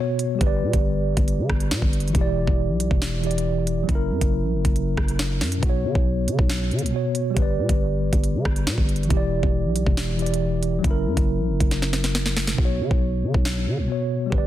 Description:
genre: hip hop, drill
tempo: 138 BPM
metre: 4/4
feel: half-time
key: B harmonic minor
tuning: A4 = 440 Hz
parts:
  - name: mellow tine electric piano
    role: accompaniment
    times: 0.0-14.5 s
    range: B2 to D5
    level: -25 LUFS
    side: right 1 dB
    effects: medium stereo tremolo
  - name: drill drum kit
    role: drums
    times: 0.2-14.4 s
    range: hi-hat, kick drum, rim click, snare drum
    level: -22 LUFS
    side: equal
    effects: none
  - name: growling 808-style bass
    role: bass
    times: 0.4-14.5 s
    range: E1 to D3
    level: -24 LUFS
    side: equal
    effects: none
room: little or no reverb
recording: dense, heavily limited modern master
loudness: -20 LUFS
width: side -13 dB against mid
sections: 0.0-12.6 A section; 12.6-14.5 B section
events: drum fill 11.7-12.6; hi-hats muted 12.6-14.5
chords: 0.4 G; 2.1 Em7; 3.9 F#7; 5.6 Bsus2; 7.4 G; 9.1 Em7; 10.8 F#7; 12.6 Bsus2

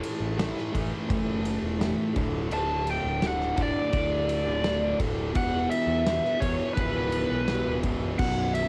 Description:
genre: quiet-loud alternative rock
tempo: 85 BPM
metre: 4/4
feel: straight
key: unclear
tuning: A4 = 438 Hz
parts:
  - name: distorted electric guitar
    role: riff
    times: 0.0-8.7 s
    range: B1 to A3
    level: -32 LUFS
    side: equal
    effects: distortion
  - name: loose indie drum kit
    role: drums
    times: 0.0-8.7 s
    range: crash cymbal, kick drum, ride cymbal, snare drum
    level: -34 LUFS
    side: equal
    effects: cassette tape
  - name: fuzz picked electric bass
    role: bass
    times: 0.2-8.7 s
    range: B0 to E2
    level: -35 LUFS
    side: equal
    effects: overdrive
  - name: biting lead guitar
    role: melody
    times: 2.5-8.7 s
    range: B4 to A5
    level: -31 LUFS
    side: equal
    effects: overdrive, cassette tape
room: little or no reverb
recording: home recording on cassette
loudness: -27 LUFS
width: mono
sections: 0.0-8.7 A section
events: none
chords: 0.0 A5; 2.2 D5; 5.4 E5

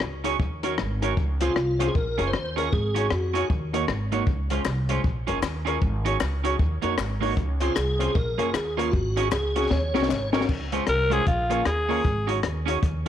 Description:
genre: ska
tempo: 154 BPM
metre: 4/4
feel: swing 62% on 8ths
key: Db major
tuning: A4 = 440 Hz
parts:
  - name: upright bass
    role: bass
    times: 0.0-13.0 s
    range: Gb1 to F2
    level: -27 LUFS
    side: equal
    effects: none
  - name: compact cocktail drum kit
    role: drums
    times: 0.0-12.9 s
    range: crash cymbal, hi-hat, kick drum, rim click, snare drum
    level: -28 LUFS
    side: left 2 dB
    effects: none
  - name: electric guitar at the edge of break-up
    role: accompaniment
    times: 0.2-12.9 s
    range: Ab3 to Db5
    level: -30 LUFS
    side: right 11 dB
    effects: none
  - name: warm upright piano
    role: stabs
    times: 0.2-13.1 s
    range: Db4 to Db5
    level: -32 LUFS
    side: left 9 dB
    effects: none
  - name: tonewheel organ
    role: melody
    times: 1.4-3.5, 7.6-10.3 s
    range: F4 to Db5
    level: -28 LUFS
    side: equal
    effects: chorus vibrato, slow rotary speaker
  - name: group handclap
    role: percussion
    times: 4.7-10.2 s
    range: none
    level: -41 LUFS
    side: left 8 dB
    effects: none
  - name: raspy alto saxophone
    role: melody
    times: 10.9-12.3 s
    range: F4 to Bb4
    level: -24 LUFS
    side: left 1 dB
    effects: none
room: light reverb, small room ambience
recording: 1960s-style stereo with parts hard left and right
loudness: -22 LUFS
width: side -10 dB against mid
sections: 0.0-10.5 A section; 10.5-13.1 B section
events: drum fill 9.7-10.5; alto saxophone solo 10.5-13.1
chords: 0.4 Ebm7; 1.2 Dbmaj7; 1.9 Bbm7; 2.7 Ab7sus4; 3.5 Ebm7; 4.3 Dbmaj7; 5.0 Bbm7; 5.8 Ab7sus4; 6.6 Ebm7; 7.4 Dbmaj7; 8.2 Bbm7; 8.9 Ab7sus4; 9.7 Ebm7; 10.5 Dbmaj7; 11.3 Bbm7; 12.0 Ab7sus4

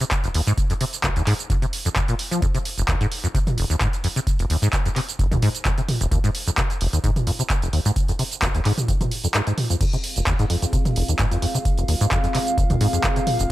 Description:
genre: acid house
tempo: 130 BPM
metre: 4/4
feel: swing 53% on 16ths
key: unclear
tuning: A4 = 441 Hz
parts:
  - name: acid bass, saw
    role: riff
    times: 0.0-13.5 s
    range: F1 to F3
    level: -22 LUFS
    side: equal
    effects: ensemble chorus
  - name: punchy analog drum machine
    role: drums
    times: 0.0-13.5 s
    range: crash cymbal, handclaps, hi-hat, shaker, toms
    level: -25 LUFS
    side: right 1 dB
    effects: none
  - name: electronic kick drum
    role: drums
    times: 0.1-13.1 s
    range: none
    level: -23 LUFS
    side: equal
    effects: none
  - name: dark analog pad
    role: sustained chords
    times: 9.8-13.5 s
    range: C4 to F5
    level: -27 LUFS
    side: equal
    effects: chorus, sidechain pumping
room: light reverb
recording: none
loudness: -19 LUFS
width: side -16 dB against mid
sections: 0.0-13.5 A section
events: kick drops out 9.3-9.8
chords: 0.0 Fm

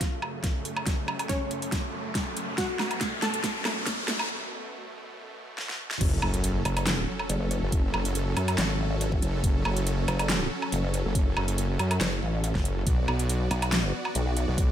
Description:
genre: heavy wobble dubstep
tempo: 140 BPM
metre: 4/4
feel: swing 53% on 16ths, half-time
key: F# harmonic minor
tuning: A4 = 440 Hz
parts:
  - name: wide unison pluck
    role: melody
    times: 0.0-4.0 s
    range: C#4 to A5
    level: -35 LUFS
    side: equal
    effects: cassette tape, ping-pong delay
  - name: supersaw chords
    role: sustained chords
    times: 0.0-14.7 s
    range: F#2 to D5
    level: -34 LUFS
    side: right 2 dB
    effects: sidechain pumping
  - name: big-room dance drum kit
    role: drums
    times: 0.0-14.7 s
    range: crash cymbal, handclaps, hi-hat, snare drum, woodblock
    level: -30 LUFS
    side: right 1 dB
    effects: overdrive
  - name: electronic kick drum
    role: drums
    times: 0.0-14.7 s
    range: none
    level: -27 LUFS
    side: equal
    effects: none
  - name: riser and sub drop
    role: sound effects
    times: 0.3-7.7 s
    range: none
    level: -35 LUFS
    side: equal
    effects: none
  - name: wobble bass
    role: bass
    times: 6.0-14.7 s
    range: F#1 to F#2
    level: -27 LUFS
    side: equal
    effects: chorus, overdrive
  - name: pulsing pluck wobble bass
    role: bass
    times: 6.7-14.5 s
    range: F#1 to B1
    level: -27 LUFS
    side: equal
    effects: chorus, overdrive
room: light reverb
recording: high-pass filter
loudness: -25 LUFS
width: side -10 dB against mid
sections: 0.0-6.0 A section; 6.0-14.7 B section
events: build-up 0.0-6.0; drum fill 0.0-4.3, 5.6-6.0; filter sweep 0.0-6.0; riser 0.3-4.3; break 4.3-6.0; drop 6.0-14.7; impact 6.0-7.7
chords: 0.0 F#m; 12.9 Bm

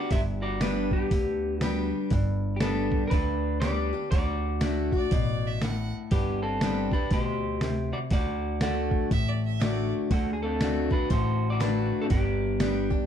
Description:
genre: honky-tonk and classic country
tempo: 120 BPM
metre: 4/4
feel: swing 61% on 8ths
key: G major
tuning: A4 = 438 Hz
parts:
  - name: electric guitar through a small old amp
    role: melody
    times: 0.0-13.1 s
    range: A3 to F#5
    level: -30 LUFS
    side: equal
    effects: none
  - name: picked acoustic archtop guitar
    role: accompaniment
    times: 0.0-13.1 s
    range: G2 to G4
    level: -30 LUFS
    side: left 4 dB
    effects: none
  - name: upright bass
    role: bass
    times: 0.1-12.9 s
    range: G1 to D2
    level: -30 LUFS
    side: equal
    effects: none
  - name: trip hop sampler-style drum kit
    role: drums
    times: 0.1-13.0 s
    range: hi-hat, kick drum, snare drum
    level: -28 LUFS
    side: right 1 dB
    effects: none
  - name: clear fiddle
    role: second line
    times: 5.0-5.9, 9.1-9.9 s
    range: D5 to F#5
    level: -37 LUFS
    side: right 3 dB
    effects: none
room: little or no reverb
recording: dark, warm production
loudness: -24 LUFS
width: side -9 dB against mid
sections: 0.0-13.1 A section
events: none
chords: 0.0 G; 4.1 D; 6.1 G; 8.1 D; 12.1 G

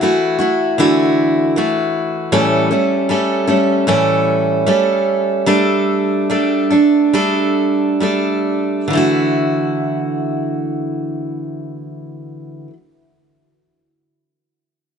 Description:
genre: pop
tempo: 66-78 BPM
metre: 4/4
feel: swing 55% on 16ths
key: D major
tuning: A4 = 439 Hz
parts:
  - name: picked steel-string acoustic guitar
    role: accompaniment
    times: 0.0-12.8 s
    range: A2 to A4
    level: -14 LUFS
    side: right 1 dB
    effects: none
room: moderate plate reverb, RT60 3.0 s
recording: nothing above 11.0 kHz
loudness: -14 LUFS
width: side -7 dB against mid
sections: 0.0-8.9 A section; 8.9-12.5 B section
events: slowing down 2.3-8.9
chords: 0.0 Dadd9; 2.3 A7; 5.5 Gsus2; 8.9 Dadd9

